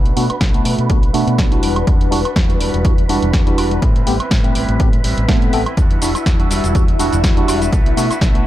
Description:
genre	filtered disco house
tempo	123 BPM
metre	4/4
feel	swing 54% on 16ths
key	E minor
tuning	A4 = 440 Hz
part	phased string machine	sustained chords	0.0-8.5 s	E4 to B5	-25 LUFS	left 2 dB	ensemble chorus, phaser, sidechain pumping, low-pass filter
part	electric guitar at the edge of break-up	riff	0.0-8.5 s	G3 to B4	-25 LUFS	right 3 dB	vintage 12-bit sampler grit, sidechain pumping, low-pass filter
part	fingered electric bass with an envelope filter	bass	0.0-8.4 s	E1 to B2	-20 LUFS	equal	sidechain pumping, low-pass filter
part	punchy analog drum machine	drums	0.1-8.4 s	hi-hat, shaker, snare drum, woodblock	-23 LUFS	equal	sidechain pumping on hats, sidechain pumping on perc
part	tine electric piano	accompaniment	0.2-8.5 s	G3 to B4	-20 LUFS	equal	overdrive, medium stereo tremolo, phaser, sidechain pumping, low-pass filter
part	electronic kick drum	drums	0.4-8.3 s	none	-15 LUFS	equal	none
room	little or no reverb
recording	none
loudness	-13 LUFS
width	side -14 dB against mid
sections	0.0-8.5 A section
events	filter sweep 0.0-8.5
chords	0.0 Bm7; 1.6 Em9; 3.8 Am9; 5.8 Em9; 7.7 Bm7

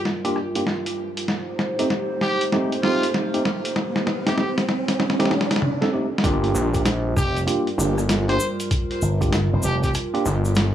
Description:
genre	glitch hop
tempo	97 BPM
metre	4/4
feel	swing 64% on 16ths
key	G minor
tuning	A4 = 440 Hz
part	dark analog pad	sustained chords	0.0-10.7 s	G3 to C5	-29 LUFS	right 1 dB	wide subtle chorus, sidechain pumping
part	riser	sound effects	0.1-5.6 s	none	-30 LUFS	right 1 dB	none
part	boom bap sampler-style drum kit	drums	0.1-10.7 s	hi-hat, rim click, snare drum, toms	-24 LUFS	equal	none
part	tine electric piano	stabs	0.2-10.3 s	A3 to A4	-26 LUFS	right 1 dB	medium stereo tremolo, sidechain pumping, low-pass filter, tape echo
part	growling trumpet	melody	2.2-9.9 s	F4 to C5	-29 LUFS	equal	vintage 12-bit sampler grit, tape echo
part	gritty driven synth bass	bass	6.2-10.7 s	G1 to Bb1	-22 LUFS	equal	tube saturation
part	electronic kick drum	drums	6.2-9.9 s	none	-24 LUFS	equal	none
part	cabasa	percussion	6.2-10.7 s	none	-34 LUFS	left 1 dB	none
part	slap bass with an envelope filter	bass	7.2-9.9 s	F1 to G1	-22 LUFS	equal	none
room	moderate plate reverb, RT60 2.6 s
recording	dry, gritty hardware recording, small room ambience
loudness	-20 LUFS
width	side -10 dB against mid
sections	0.0-6.2 A section; 6.2-10.7 B section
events	build-up 0.0-6.2; drum fill 0.0-5.6, 5.6-6.2; riser 0.1-5.6; drop 6.2-10.7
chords	0.0 Gm7; 1.3 Am7b5; 6.2 Gm7

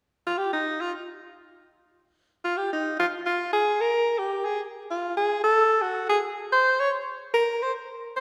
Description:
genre	jazz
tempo	221 BPM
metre	4/4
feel	swing 59% on 8ths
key	unclear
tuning	A4 = 440 Hz
part	clear alto saxophone	solo	0.3-8.2 s	Eb4 to Db5	-25 LUFS	equal	none
room	wet scoring stage reverb, RT60 1.9 s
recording	recorded in a church or concert hall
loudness	-25 LUFS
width	mono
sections	0.1-8.2 A section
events	none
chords	none

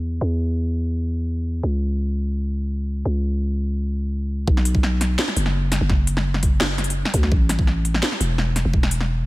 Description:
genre	half-time drum and bass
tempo	169 BPM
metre	4/4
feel	half-time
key	unclear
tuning	A4 = 440 Hz
part	growling 808-style bass	bass	0.0-9.3 s	E1 to E2	-21 LUFS	equal	none
part	electronic kick drum	drums	4.5-8.8 s	none	-19 LUFS	equal	overdrive
part	drum and bass drum kit	drums	4.6-9.1 s	hi-hat, snare drum	-24 LUFS	equal	none
room	little or no reverb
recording	none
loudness	-19 LUFS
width	side -19 dB against mid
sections	0.0-4.5 A section; 4.5-9.3 B section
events	drop 4.5-9.3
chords	none

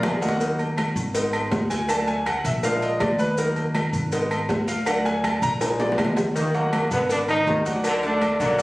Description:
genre	latin, salsa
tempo	161 BPM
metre	4/4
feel	straight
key	Eb harmonic minor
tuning	A4 = 440 Hz
part	bright concert grand piano	accompaniment	0.0-8.6 s	D3 to Cb6	-25 LUFS	equal	none
part	upright bass	bass	0.0-8.6 s	Ab1 to Eb2	-29 LUFS	equal	none
part	claves	percussion	0.0-8.4 s	none	-37 LUFS	left 1 dB	none
part	congas	percussion	0.0-8.6 s	none	-31 LUFS	equal	none
part	cowbell and bongos	percussion	0.0-8.6 s	none	-29 LUFS	left 1 dB	none
part	maracas	percussion	0.0-8.6 s	none	-39 LUFS	left 1 dB	none
part	timbales and agogo bells	percussion	0.0-8.6 s	none	-29 LUFS	right 1 dB	none
part	brilliant trombone section	second line	6.3-8.6 s	D3 to F#3	-29 LUFS	equal	none
part	bright trombone	melody	6.4-8.6 s	Bb3 to Eb4	-24 LUFS	equal	none
room	moderate plate reverb, RT60 3.6 s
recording	recorded on a phone in the room, studio reverb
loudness	-20 LUFS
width	side -19 dB against mid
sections	0.0-6.4 A section; 6.4-8.6 B section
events	drum fill 0.0-0.4, 5.6-6.4; grand piano solo 0.0-6.4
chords	0.4 Ebm; 1.1 Abm; 1.9 D; 2.6 Bb7; 3.4 Ebm; 4.1 Abm; 4.9 D; 5.6 Bb7; 6.4 Abm; 7.8 D

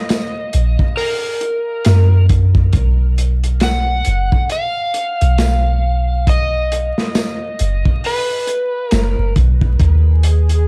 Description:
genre	trip hop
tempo	68 BPM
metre	4/4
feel	swing 60% on 16ths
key	unclear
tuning	A4 = 439 Hz
part	overdriven slide guitar	melody	0.0-9.3 s	Bb4 to F#5	-24 LUFS	equal	tape echo
part	crunchy breakbeat drum kit	drums	0.1-10.7 s	hi-hat, kick drum, snare drum	-20 LUFS	equal	none
part	tambourine	percussion	0.1-9.1 s	none	-38 LUFS	equal	none
part	soft 808-style bass	bass	0.5-10.7 s	F#1 to Gb2	-15 LUFS	equal	none
part	bowed-like drone	texture	10.0-10.7 s	Ab4	-29 LUFS	equal	built-in reverb
room	small room ambience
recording	dark, warm production, vinyl crackle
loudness	-16 LUFS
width	mono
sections	0.0-10.7 A section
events	none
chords	0.0 Ebm; 2.7 B; 9.8 N.C.

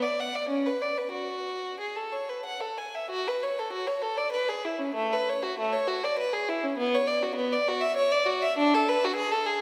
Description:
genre	classical, baroque-style suite movement for unaccompanied violin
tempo	90-105 BPM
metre	3/4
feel	rubato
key	F# minor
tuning	A4 = 441 Hz
part	rich violin	solo	0.0-9.6 s	A3 to G#5	-28 LUFS	equal	none
room	wet church reverb, RT60 2.9 s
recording	recorded in a church or concert hall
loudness	-28 LUFS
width	mono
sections	0.0-3.1 A section; 3.1-9.6 B section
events	none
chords	none

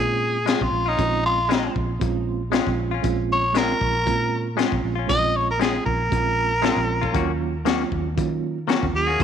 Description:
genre	straight-eighth soul blues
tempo	117 BPM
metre	4/4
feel	swing 54% on 16ths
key	Bb minor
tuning	A4 = 439 Hz
part	growling tenor saxophone	melody	0.0-9.2 s	Eb4 to Eb5	-22 LUFS	equal	none
part	mellow reed electric piano	accompaniment	0.0-9.2 s	Gb3 to F4	-28 LUFS	right 12 dB	fast tremolo
part	vintage muted fingered electric bass	bass	0.0-9.2 s	Bb1 to Eb3	-27 LUFS	equal	none
part	direct-recorded clean electric guitar	stabs	0.5-9.2 s	Eb3 to Gb4	-28 LUFS	left 10 dB	none
part	crunchy breakbeat drum kit	drums	0.5-9.2 s	hi-hat, kick drum, snare drum	-25 LUFS	left 5 dB	none
room	light reverb, studio ambience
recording	1960s-style stereo with parts hard left and right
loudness	-20 LUFS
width	side -8 dB against mid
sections	0.0-9.2 A section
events	none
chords	0.0 Bbm7; 7.1 Ebm7

